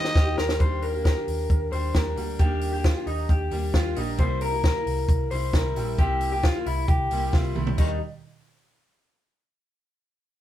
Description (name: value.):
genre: jangly indie pop.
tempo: 134 BPM.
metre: 4/4.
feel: straight.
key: Eb major.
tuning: A4 = 440 Hz.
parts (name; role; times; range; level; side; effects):
picked steel-string acoustic guitar; accompaniment; 0.0-8.0 s; C3 to G4; -33 LUFS; right 4 dB; none.
electric guitar through a small old amp; arpeggios; 0.0-8.0 s; Eb4 to C5; -28 LUFS; left 3 dB; none.
vintage muted picked electric bass; bass; 0.0-8.0 s; Bb1 to Eb3; -29 LUFS; equal; none.
compact cocktail drum kit; drums; 0.0-7.9 s; crash cymbal, hi-hat, kick drum, snare drum, toms; -24 LUFS; equal; none.
room: moderate studio reverb, RT60 0.6 s.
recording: band playing live in one room.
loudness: -22 LUFS.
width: side -12 dB against mid.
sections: 0.6-7.8 A section; 7.8-9.6 B section.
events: drum fill 0.0-0.6, 7.3-7.8.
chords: 0.0 Eb; 0.6 Ebmaj7; 4.2 C7; 7.8 N.C..